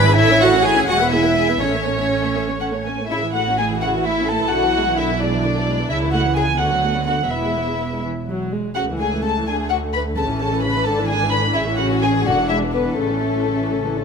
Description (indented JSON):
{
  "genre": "quick classical-period movement for string orchestra",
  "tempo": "79-88 BPM (dotted quarters)",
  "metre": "6/8",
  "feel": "rubato",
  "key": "A major",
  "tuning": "A4 = 440 Hz",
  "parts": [
    { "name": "warm chamber violin section", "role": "melody", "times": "0.0-14.0 s", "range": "A4 to B5", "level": "-23 LUFS", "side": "left 1 dB", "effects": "none" },
    { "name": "warm chamber violin section", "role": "second line", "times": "0.0-14.0 s", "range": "A3 to B5", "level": "-22 LUFS", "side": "left 2 dB", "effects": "none" },
    { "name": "warm chamber viola section", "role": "accompaniment", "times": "0.0-14.0 s", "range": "C#3 to C#5", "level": "-23 LUFS", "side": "equal", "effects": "none" },
    { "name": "dark chamber cello section", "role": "bass", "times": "0.0-14.0 s", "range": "C#2 to B4", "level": "-25 LUFS", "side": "right 2 dB", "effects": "none" },
    { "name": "rich chamber double bass section", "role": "bass", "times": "0.0-14.0 s", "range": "E1 to D2", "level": "-24 LUFS", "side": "right 3 dB", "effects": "none" }
  ],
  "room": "moderate scoring stage reverb, RT60 1.5 s",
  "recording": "none",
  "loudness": "-17 LUFS",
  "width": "side -6 dB against mid",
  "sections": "0.0-3.1 A section; 3.1-14.0 B section",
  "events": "none",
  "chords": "0.2 A; 0.9 E; 1.6 A; 4.5 E7/B; 5.9 A/C#; 6.6 Bm7/D; 7.3 E; 8.8 A/C#; 9.5 D5; 10.2 A; 10.9 E7/G#; 11.6 A; 12.3 E7; 13.0 A"
}